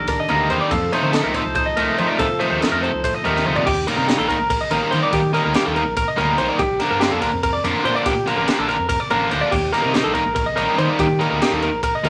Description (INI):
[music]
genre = math rock and midwest emo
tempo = 286 BPM (eighths)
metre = 7/8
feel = straight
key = unclear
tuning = A4 = 440 Hz
[part]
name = twelve-string electric guitar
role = accompaniment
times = 0.0-3.7 s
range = Eb3 to A4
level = -29 LUFS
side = equal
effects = none
[part]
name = twelve-string electric guitar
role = arpeggios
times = 0.0-12.1 s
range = G4 to Eb5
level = -23 LUFS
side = equal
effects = none
[part]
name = growling fingered electric bass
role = bass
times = 0.0-12.1 s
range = A1 to F3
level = -29 LUFS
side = equal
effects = overdrive
[part]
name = crisp fusion drum kit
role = drums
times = 0.1-12.1 s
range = crash cymbal, kick drum, ride cymbal, snare drum, toms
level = -29 LUFS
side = equal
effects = none
[part]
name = overdriven electric guitar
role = riff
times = 0.3-12.1 s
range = C3 to Eb4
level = -24 LUFS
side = equal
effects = none
[sound]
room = wet club ambience, RT60 0.5 s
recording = vinyl crackle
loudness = -19 LUFS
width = mono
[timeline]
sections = 0.0-3.7 A section; 3.7-12.1 B section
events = drum fill 3.3-3.7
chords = 0.0 Ebmaj7; 0.7 F7; 3.7 Ebmaj7; 6.6 Bbmaj7; 9.5 Ebmaj7